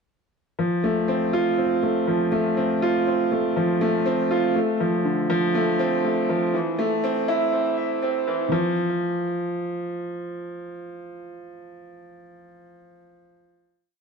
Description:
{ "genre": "electronica", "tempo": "121 BPM", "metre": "4/4", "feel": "straight", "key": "F major", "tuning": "A4 = 439 Hz", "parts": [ { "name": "clear upright piano", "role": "solo", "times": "0.6-14.0 s", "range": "D3 to E5", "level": "-21 LUFS", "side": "equal", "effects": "none" } ], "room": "wet echo chamber reverb, RT60 1.9 s", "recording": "dark, warm production, high-pass filter", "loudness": "-21 LUFS", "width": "side -5 dB against mid", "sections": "0.6-8.5 build; 8.5-12.5 final note", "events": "build-up 0.6-8.5", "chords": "none", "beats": "| 0.59 1.08 1.58 2.08 | 2.57 3.07 3.56 4.06 | 4.56 5.05 5.55 6.04 | 6.54 7.04 7.53 8.03 | 8.52 9.02 9.52 10.01 | 10.51 11.00 11.50 11.99" }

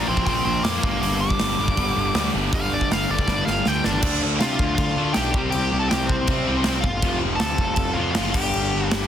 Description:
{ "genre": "punk rock", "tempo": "160 BPM", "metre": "4/4", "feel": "straight", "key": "unclear", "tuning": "A4 = 440 Hz", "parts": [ { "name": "high-gain lead guitar", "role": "melody", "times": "0.0-9.1 s", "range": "C4 to D6", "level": "-25 LUFS", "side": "equal", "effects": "distortion, tape echo" }, { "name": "cranked stack guitar", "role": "riff", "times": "0.0-9.1 s", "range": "F2 to D4", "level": "-26 LUFS", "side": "left 2 dB", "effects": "overdrive" }, { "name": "thick fuzz guitar", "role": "riff", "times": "0.0-3.8 s", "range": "G2 to Bb3", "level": "-28 LUFS", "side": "right 1 dB", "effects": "distortion" }, { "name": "fuzz picked electric bass", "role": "bass", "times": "0.0-9.1 s", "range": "F1 to D3", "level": "-26 LUFS", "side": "equal", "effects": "overdrive" }, { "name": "big rock drum kit", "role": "drums", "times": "0.2-9.0 s", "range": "crash cymbal, hi-hat, kick drum, snare drum", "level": "-25 LUFS", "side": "equal", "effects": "none" } ], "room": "little or no reverb", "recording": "dense, heavily limited modern master", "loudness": "-19 LUFS", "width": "side -9 dB against mid", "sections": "0.0-4.0 A section; 4.0-9.1 B section", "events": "lead electric guitar solo 0.0-4.0; drum fill 3.3-4.0", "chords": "0.0 Bb; 0.8 G5; 4.0 Dm; 5.3 C5; 7.0 F; 8.4 G5", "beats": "0.27 0.65 | 1.03 1.40 1.78 2.16 | 2.53 2.91 3.28 3.66 | 4.04 4.41 4.79 5.16 | 5.54 5.91 6.29 6.66 | 7.04 7.42 7.79 8.17 | 8.54 8.92" }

